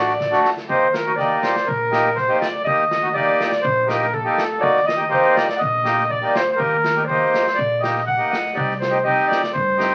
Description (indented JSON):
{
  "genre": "klezmer",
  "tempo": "122 BPM",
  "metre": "4/4",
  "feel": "straight",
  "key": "unclear",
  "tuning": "A4 = 440 Hz",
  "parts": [
    { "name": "accordion", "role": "melody", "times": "0.0-9.9 s", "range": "A4 to F#5", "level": "-23 LUFS", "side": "equal", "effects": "none" },
    { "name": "warm clarinet", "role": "second line", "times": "0.0-9.9 s", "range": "A4 to F#5", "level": "-25 LUFS", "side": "equal", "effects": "none" },
    { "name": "accordion", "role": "accompaniment", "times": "0.0-9.9 s", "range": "A3 to G4", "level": "-23 LUFS", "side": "equal", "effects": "none" },
    { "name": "upright bass", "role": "bass", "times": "0.0-9.9 s", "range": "A1 to G2", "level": "-33 LUFS", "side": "equal", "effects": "none" },
    { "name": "street-band drum kit", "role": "drums", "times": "0.1-9.9 s", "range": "kick drum, snare drum", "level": "-32 LUFS", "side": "equal", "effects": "none" }
  ],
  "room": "wet studio ambience, RT60 0.5 s",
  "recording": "very old 78 rpm record, vinyl crackle",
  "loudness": "-19 LUFS",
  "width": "mono",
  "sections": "0.7-9.9 A section",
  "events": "drum fill 0.2-0.7",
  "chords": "0.0 D; 0.7 Eb; 8.6 Cm"
}